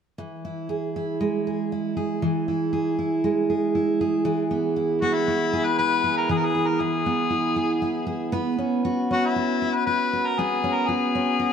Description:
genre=acoustic pop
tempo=118 BPM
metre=4/4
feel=straight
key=unclear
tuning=A4 = 438 Hz
part: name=picked steel-string acoustic guitar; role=accompaniment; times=0.2-11.5 s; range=E3 to B4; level=-23 LUFS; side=right 2 dB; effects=none
part: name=mellow harmonica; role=melody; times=5.0-11.5 s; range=E4 to B4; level=-24 LUFS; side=left 4 dB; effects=none
room=wet plate reverb, RT60 3.2 s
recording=heard from further back in the room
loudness=-21 LUFS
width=side -7 dB against mid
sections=0.2-4.3 A section; 4.3-11.5 B section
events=none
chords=0.2 E; 8.3 Bsus2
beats=| 0.18 0.69 1.20 1.71 | 2.22 2.73 3.25 3.75 | 4.26 4.78 5.29 5.79 | 6.30 6.81 7.32 7.83 | 8.34 8.85 9.36 9.87 | 10.38 10.89 11.40

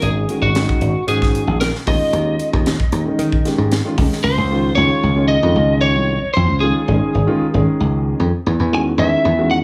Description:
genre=electric jazz fusion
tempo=114 BPM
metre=4/4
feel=straight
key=unclear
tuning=A4 = 440 Hz
part: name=lightly driven lead guitar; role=melody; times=0.0-9.6 s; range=Gb4 to G#5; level=-22 LUFS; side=equal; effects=tape echo
part: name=warm concert grand piano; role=accompaniment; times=0.0-9.6 s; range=Eb3 to Ab4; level=-23 LUFS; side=equal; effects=none
part: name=dry thumbed slap bass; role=bass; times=0.0-9.6 s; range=Ab1 to Eb3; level=-20 LUFS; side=equal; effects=none
part: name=crisp fusion drum kit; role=drums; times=0.0-4.2 s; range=hi-hat, kick drum, snare drum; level=-23 LUFS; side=equal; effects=none
room=small room ambience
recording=studio ambience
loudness=-17 LUFS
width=mono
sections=0.0-4.2 A section; 4.2-9.6 B section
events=none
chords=0.0 Ab7sus4; 1.9 Eb9sus4; 4.2 Dbadd9; 8.5 Emaj9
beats=| 0.03 0.56 1.08 1.61 | 2.14 2.67 3.19 3.72 | 4.24 4.77 5.30 5.82 | 6.35 6.88 7.40 7.93 | 8.46 8.98 9.51

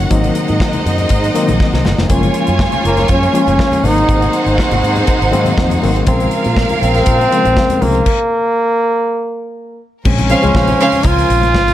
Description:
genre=disco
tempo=121 BPM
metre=4/4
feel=straight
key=Bb minor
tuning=A4 = 437 Hz
part: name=warm symphonic violin section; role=second line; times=0.0-11.0 s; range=Bb3 to Ab5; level=-18 LUFS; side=right 2 dB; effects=none
part: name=reed electric piano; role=accompaniment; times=0.0-11.7 s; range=Db3 to F5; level=-18 LUFS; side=left 3 dB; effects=overdrive, fast tremolo
part: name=clear studio string section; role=sustained chords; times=0.0-11.7 s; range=Db3 to Ab5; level=-24 LUFS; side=equal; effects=none
part: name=fingered electric bass with an envelope filter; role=bass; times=0.0-11.7 s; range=F1 to Bb2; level=-17 LUFS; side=equal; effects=none
part: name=modern studio drum kit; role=drums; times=0.1-11.7 s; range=crash cymbal, hi-hat, kick drum, snare drum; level=-18 LUFS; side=equal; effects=none
part: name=congas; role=percussion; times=0.1-11.7 s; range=none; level=-25 LUFS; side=left 3 dB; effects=none
part: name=bright trombone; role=melody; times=2.9-11.7 s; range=Bb3 to F4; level=-15 LUFS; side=equal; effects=none
room=light reverb, studio reverb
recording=none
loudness=-11 LUFS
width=side -12 dB against mid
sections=0.0-2.1 A section; 2.1-10.1 B section; 10.1-11.7 C section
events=drum fill 1.6-2.1; reed electric piano fill 5.1-6.1; stop 8.1-10.1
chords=0.1 Ab7; 2.1 Gbmaj9; 3.8 Ab7; 6.1 Bbm7; 8.1 N.C.; 10.1 Bbm9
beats=| 0.11 0.61 1.10 1.60 | 2.10 2.60 3.09 3.59 | 4.09 4.58 5.08 5.58 | 6.08 6.57 7.07 7.57 | 8.06 8.56 9.06 9.55 | 10.05 10.55 11.04 11.54

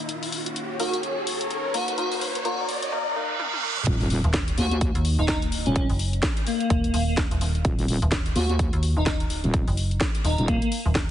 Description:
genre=bass house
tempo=127 BPM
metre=4/4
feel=swing 59% on 16ths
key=Eb minor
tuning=A4 = 436 Hz
part: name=sweeping resonant pad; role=sustained chords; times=0.0-11.1 s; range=Bb3 to Eb5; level=-36 LUFS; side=left 2 dB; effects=chorus, sidechain pumping
part: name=riser, reverse cymbal and sub drop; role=sound effects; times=0.0-5.8 s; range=none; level=-30 LUFS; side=right 2 dB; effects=none
part: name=house drum kit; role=drums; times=0.1-11.1 s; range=hi-hat, snare drum, toms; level=-30 LUFS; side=left 1 dB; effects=overdrive
part: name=airy dreamy lead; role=melody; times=0.8-10.7 s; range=Bb3 to Gb4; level=-29 LUFS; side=left 1 dB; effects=chorus, tape echo
part: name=band-passed chord stab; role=stabs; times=0.8-3.9 s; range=Bb3 to Bb4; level=-32 LUFS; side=left 2 dB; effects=phaser, wide subtle chorus, sidechain pumping, tape echo
part: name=wobble bass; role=bass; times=3.9-10.6 s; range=Eb1 to Eb2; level=-24 LUFS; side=equal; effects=chorus, overdrive, sidechain pumping
part: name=electronic kick drum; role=drums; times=3.9-11.1 s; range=none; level=-25 LUFS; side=equal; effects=overdrive
part: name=metallic FM bass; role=bass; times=4.2-11.1 s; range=Eb1 to Eb2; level=-24 LUFS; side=equal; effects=overdrive, sidechain pumping
room=light reverb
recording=heavily compressed radio sound, multiband compression, high-pass filter, nothing above 10.4 kHz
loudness=-22 LUFS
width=side -11 dB against mid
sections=0.0-3.9 A section; 3.9-11.1 B section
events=build-up 0.0-3.9; riser 0.0-2.9; filter sweep on synth stab 0.0-3.9; filter sweep on analog synth pad 0.0-3.9; reverse cymbal 2.9-3.9; drum fill 3.4-3.9; drop 3.9-11.1; impact 3.9-5.8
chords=0.0 Eb5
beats=| 0.09 0.56 1.03 1.51 | 1.98 2.45 2.92 3.40 | 3.87 4.34 4.81 5.29 | 5.76 6.23 6.70 7.17 | 7.65 8.12 8.59 9.06 | 9.54 10.01 10.48 10.96

